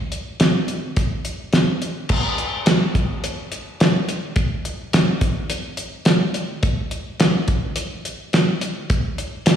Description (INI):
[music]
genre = rock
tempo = 106 BPM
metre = 4/4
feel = straight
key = none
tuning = none
[part]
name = damped 70s drum kit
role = drums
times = 0.1-9.6 s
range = crash cymbal, hi-hat, kick drum, snare drum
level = -18 LUFS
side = equal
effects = slapback echo
[sound]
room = wet lush hall reverb, RT60 1.9 s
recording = live gig heard through the venue's PA, recital hall reverb, studio ambience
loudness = -18 LUFS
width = side -9 dB against mid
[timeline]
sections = 0.0-2.1 A section; 2.1-9.6 B section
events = none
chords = none